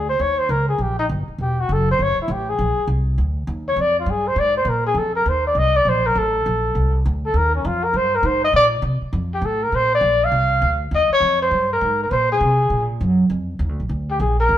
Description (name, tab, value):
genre	jazz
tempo	202 BPM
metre	4/4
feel	swing 62% on 8ths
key	Bb mixolydian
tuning	A4 = 439 Hz
part	breathy trumpet	melody	0.0-14.6 s	Db4 to F5	-18 LUFS	left 1 dB	none
part	upright bass	bass	0.0-14.6 s	E1 to C3	-21 LUFS	equal	none
room	moderate stone room reverb, RT60 1.2 s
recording	band playing live in one room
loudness	-17 LUFS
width	side -12 dB against mid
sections	0.0-9.7 A section; 9.7-14.6 B section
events	trumpet solo 0.0-9.7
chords	0.2 Eb7; 1.4 Emadd9; 2.6 Bb9; 5.0 F7; 7.3 Ebadd9; 8.5 Bbsus2; 9.1 F; 9.7 Bbadd9; 10.9 Eb9; 12.1 Bb9